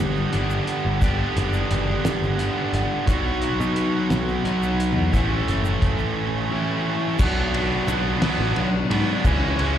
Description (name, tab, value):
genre	indie rock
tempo	58 BPM (dotted quarters)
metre	6/8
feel	straight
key	unclear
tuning	A4 = 440 Hz
part	high-gain distorted guitar	riff	0.0-9.8 s	E3 to A4	-24 LUFS	right 6 dB	distortion, analog chorus, slapback echo
part	overdriven semi-hollow guitar	riff	0.0-9.8 s	G2 to E4	-26 LUFS	left 7 dB	none
part	picked electric bass	bass	0.0-9.8 s	F#1 to B2	-24 LUFS	equal	none
part	egg shaker	percussion	0.2-9.4 s	none	-48 LUFS	left 7 dB	none
part	cloth-damped thuddy drum kit	drums	0.3-9.7 s	crash cymbal, hi-hat, kick drum, ride cymbal, snare drum	-25 LUFS	equal	none
room	light reverb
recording	live gig heard through the venue's PA, recital hall reverb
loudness	-20 LUFS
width	side -10 dB against mid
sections	0.0-7.2 A section; 7.2-9.8 B section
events	break 6.2-7.2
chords	0.0 Gmaj7; 3.1 B; 5.1 A; 7.2 Bm; 9.2 C#m